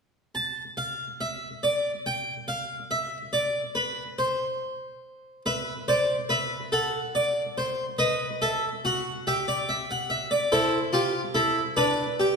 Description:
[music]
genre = classical, baroque-style 4-part fugue for harpsichord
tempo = 47 BPM (dotted quarters)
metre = 6/8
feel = straight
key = unclear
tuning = A4 = 440 Hz
[part]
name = harpsichord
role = solo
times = 0.3-12.4 s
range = D4 to A5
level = -24 LUFS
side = equal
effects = none
[sound]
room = wet scoring stage reverb, RT60 1.6 s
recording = recorded in a church or concert hall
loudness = -25 LUFS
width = side -4 dB against mid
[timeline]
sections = 0.3-12.4 A section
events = none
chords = 0.3 N.C.; 5.5 E5/B; 6.7 F#dim/A; 8.0 B7; 9.3 Em/G; 10.5 Am/E; 11.8 Bm/D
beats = | 0.34 1.63 | 2.91 4.18 | 5.46 6.73 | 8.00 9.26 | 10.51 11.77

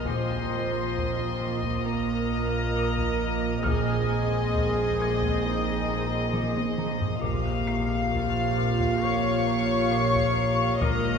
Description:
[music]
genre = cinematic, suspense film score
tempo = 67 BPM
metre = 4/4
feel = straight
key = Bb minor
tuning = A4 = 441 Hz
[part]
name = mellow clarinet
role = second line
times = 0.0-11.2 s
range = Eb4 to Db5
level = -32 LUFS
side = equal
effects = none
[part]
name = warm studio violin section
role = second line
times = 0.0-11.2 s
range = Eb5 to Db6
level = -34 LUFS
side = left 3 dB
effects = none
[part]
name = dark chamber viola section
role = accompaniment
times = 0.0-11.2 s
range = C3 to Ab4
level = -34 LUFS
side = right 2 dB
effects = none
[part]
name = glassy FM pad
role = sustained chords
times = 0.0-11.2 s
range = F4 to Db6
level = -40 LUFS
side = equal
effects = none
[part]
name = mellow French horn section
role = sustained chords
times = 0.0-11.2 s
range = Eb3 to Db5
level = -35 LUFS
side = left 1 dB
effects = none
[part]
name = rich symphonic double bass section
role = bass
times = 0.0-11.2 s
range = Bb1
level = -33 LUFS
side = right 3 dB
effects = none
[part]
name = warm symphonic cello section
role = bass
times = 0.0-11.2 s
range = Bb2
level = -32 LUFS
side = right 5 dB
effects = none
[part]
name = felt-muted upright piano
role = texture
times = 0.0-11.2 s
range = F6 to C7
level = -42 LUFS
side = equal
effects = none
[part]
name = warm symphonic violin section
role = melody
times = 0.1-11.2 s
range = Eb5 to F5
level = -32 LUFS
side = left 4 dB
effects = none
[part]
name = marimba with medium hard mallets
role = riff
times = 0.1-11.1 s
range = Bb2 to Bb3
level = -31 LUFS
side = left 3 dB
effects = none
[part]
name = taiko ensemble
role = drums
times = 0.1-11.2 s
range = none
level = -35 LUFS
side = left 1 dB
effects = none
[part]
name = timpani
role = percussion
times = 0.1-5.0, 10.8-11.2 s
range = Bb2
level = -40 LUFS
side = left 2 dB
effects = none
[sound]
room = wet cathedral reverb, RT60 5.0 s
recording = recorded in a church or concert hall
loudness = -23 LUFS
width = side -6 dB against mid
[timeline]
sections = 0.0-11.2 A section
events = drum fill 6.3-7.2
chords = 0.1 Ebsus2/Bb; 3.6 Ab/Bb; 7.2 Bbmadd9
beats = | 0.06 0.96 1.85 2.75 | 3.65 4.54 5.44 6.33 | 7.23 8.12 9.02 9.91 | 10.81

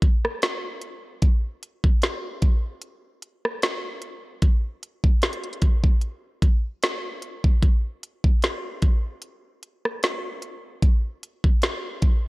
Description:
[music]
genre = R&B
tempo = 75 BPM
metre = 4/4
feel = swing 54% on 16ths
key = none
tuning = none
[part]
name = trap drum kit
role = drums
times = 0.0-12.2 s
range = hi-hat, kick drum, rim click, snare drum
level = -20 LUFS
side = equal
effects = none
[sound]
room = light reverb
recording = worn, warbling old tape, cassette tape, warbly pitch drift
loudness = -21 LUFS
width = side -22 dB against mid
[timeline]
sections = 0.0-12.3 A section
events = none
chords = none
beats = 0.42 | 1.22 2.02 2.82 3.62 | 4.42 5.22 6.02 6.82 | 7.62 8.42 9.22 10.02 | 10.82 11.62

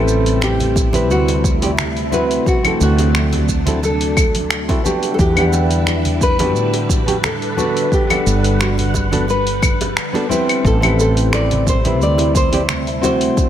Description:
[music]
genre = sunset chillout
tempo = 88 BPM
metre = 4/4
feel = swing 53% on 16ths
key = A dorian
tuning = A4 = 440 Hz
[part]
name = nylon-string guitar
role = melody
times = 0.0-13.5 s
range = E4 to D5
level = -21 LUFS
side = equal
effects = digital delay
[part]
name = nylon-string guitar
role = accompaniment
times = 0.0-13.5 s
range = G3 to F#5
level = -20 LUFS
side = equal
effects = auto-pan, vintage 12-bit sampler grit, digital delay
[part]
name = soft string machine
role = sustained chords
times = 0.0-13.5 s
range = C3 to F#5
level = -23 LUFS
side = right 1 dB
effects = phaser, ensemble chorus
[part]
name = woody fretless electric bass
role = bass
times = 0.0-13.3 s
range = G1 to A2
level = -19 LUFS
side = equal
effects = none
[part]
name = deep house drum kit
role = drums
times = 0.1-13.5 s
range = claves, finger snaps, hi-hat, shaker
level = -22 LUFS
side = left 1 dB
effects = none
[part]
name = bongos and congas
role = percussion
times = 0.4-13.5 s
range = none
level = -27 LUFS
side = right 3 dB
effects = none
[part]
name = electronic kick drum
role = drums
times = 0.8-13.5 s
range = none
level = -18 LUFS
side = equal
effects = none
[sound]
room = light reverb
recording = none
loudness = -14 LUFS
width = side -10 dB against mid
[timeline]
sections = 0.0-13.5 A section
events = none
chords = 0.0 Am7; 2.5 D7; 4.9 Em7; 7.9 Gmaj7; 10.7 Am7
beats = 0.42 1.10 1.79 | 2.47 3.15 3.83 4.51 | 5.20 5.88 6.56 7.24 | 7.92 8.60 9.29 9.97 | 10.65 11.33 12.01 12.70 | 13.38

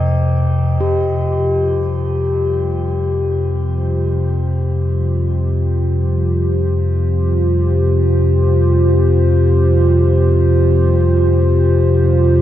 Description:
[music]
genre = dark ambient drone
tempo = free time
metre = none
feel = none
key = unclear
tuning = A4 = 440 Hz
[part]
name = tubular bells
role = arpeggios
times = 0.0-12.4 s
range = G4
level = -30 LUFS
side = right 1 dB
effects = dub echo, shimmer reverb
[part]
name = deep rumbling drone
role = drone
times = 0.0-12.4 s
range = F2 to C3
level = -14 LUFS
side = equal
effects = built-in reverb
[part]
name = bronze singing bowl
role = texture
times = 0.0-12.4 s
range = G4 to C5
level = -24 LUFS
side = left 3 dB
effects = shimmer reverb
[part]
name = dark analog pad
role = sustained chords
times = 0.8-12.4 s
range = F4 to C5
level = -18 LUFS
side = equal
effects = chorus, shimmer reverb
[sound]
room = moderate spring reverb, RT60 2.6 s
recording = echo-heavy mix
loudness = -13 LUFS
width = side -12 dB against mid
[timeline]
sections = 0.8-12.4 A section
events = none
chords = 0.0 Fsus2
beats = free time

